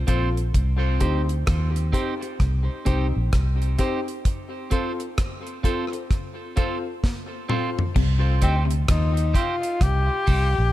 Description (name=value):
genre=dub reggae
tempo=65 BPM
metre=4/4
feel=swing 63% on 16ths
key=C dorian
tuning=A4 = 440 Hz
part: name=vintage muted fingered electric bass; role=bass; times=0.0-10.7 s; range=Bb1 to Eb2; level=-21 LUFS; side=equal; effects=none
part: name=clean electric guitar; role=accompaniment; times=0.1-10.6 s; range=C4 to C5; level=-31 LUFS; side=right 5 dB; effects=high-pass filter, tape echo
part: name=warm upright piano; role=stabs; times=0.1-7.8 s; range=C4 to C5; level=-31 LUFS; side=left 4 dB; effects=high-pass filter, tape echo
part: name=deep reggae drum kit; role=drums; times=0.1-10.5 s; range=crash cymbal, hi-hat, kick drum, rim click, snare drum, toms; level=-24 LUFS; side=equal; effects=none
part: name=electric guitar at the edge of break-up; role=riff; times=8.0-8.2 s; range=C3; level=-34 LUFS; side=left 5 dB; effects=tape echo
part: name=mellow tonewheel organ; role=accompaniment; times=8.2-10.6 s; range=C3 to Eb4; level=-43 LUFS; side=left 1 dB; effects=none
part: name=breathy tenor saxophone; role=melody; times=8.4-10.7 s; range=C4 to G4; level=-25 LUFS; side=left 3 dB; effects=tape echo
room=light reverb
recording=echo-heavy mix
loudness=-21 LUFS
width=side -15 dB against mid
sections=0.0-8.0 A section; 8.0-10.7 B section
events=break 4.3-8.0; filter sweep 4.3-10.7; drum fill 7.0-8.0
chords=0.0 F; 0.5 Cm; 4.3 F; 8.0 Cm